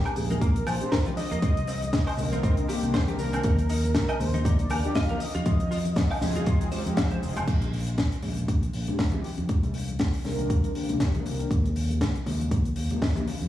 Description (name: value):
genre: nu-disco, nu disco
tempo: 119 BPM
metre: 4/4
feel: swing 56% on 16ths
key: C minor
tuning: A4 = 441 Hz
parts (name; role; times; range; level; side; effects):
- wide unison lead; melody; 0.0-6.7 s; G4 to F5; -34 LUFS; right 1 dB; cassette tape, dub echo
- direct-recorded clean electric guitar; riff; 0.1-7.4 s; C3 to F5; -36 LUFS; right 2 dB; ensemble chorus, dub echo
- tight funk drum kit; drums; 0.1-13.5 s; cabasa, crash cymbal, hi-hat, snare drum, woodblock; -32 LUFS; left 2 dB; none
- fingered electric bass; bass; 0.2-13.5 s; F1 to F2; -28 LUFS; equal; none
- congas; percussion; 0.2-13.4 s; none; -34 LUFS; left 3 dB; none
- electronic kick drum; drums; 0.4-13.1 s; none; -26 LUFS; equal; none
- mellow synth brass; accompaniment; 0.8-13.3 s; D3 to Bb4; -32 LUFS; equal; chorus, sidechain pumping, dub echo
room: studio reverb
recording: played on a big sound system in a bare room, stone room reverb, small room reverb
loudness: -23 LUFS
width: side -13 dB against mid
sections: 0.0-7.5 A section; 7.5-13.5 B section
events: drop 0.0-7.5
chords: 0.0 Bb13; 1.4 Cm7; 3.4 Ebmaj7(no3); 5.2 Fm7; 7.5 Bb5; 9.5 Cm7; 11.5 N.C.